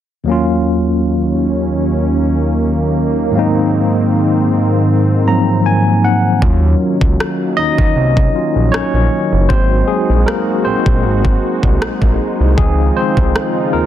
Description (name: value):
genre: contemporary R&B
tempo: 78 BPM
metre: 4/4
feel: swing 54% on 16ths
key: Eb dorian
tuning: A4 = 438 Hz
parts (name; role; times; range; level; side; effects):
- barky tine electric piano; accompaniment; 0.2-13.9 s; Eb2 to Bb5; -15 LUFS; left 1 dB; medium stereo tremolo
- warm analog pad; sustained chords; 0.3-13.9 s; Eb2 to Gb4; -18 LUFS; right 1 dB; wide subtle chorus
- smooth synth bass; bass; 6.4-13.8 s; Gb1 to Eb2; -15 LUFS; equal; none
- trap drum kit; drums; 6.4-13.5 s; kick drum, rim click; -16 LUFS; equal; none
room: little or no reverb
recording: dense, heavily limited modern master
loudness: -12 LUFS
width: side -11 dB against mid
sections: 0.3-6.4 A section; 6.4-13.9 B section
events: tine electric piano fill 4.9-6.4; tine electric piano solo 6.4-13.9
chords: 0.3 Ebm7; 3.3 Ab7; 6.4 Ebm7; 9.5 Ab7; 12.6 Dbmaj7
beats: | 0.27 1.04 1.81 2.58 | 3.35 4.12 4.88 5.65 | 6.42 7.19 7.96 8.73 | 9.50 10.27 11.04 11.81 | 12.58 13.35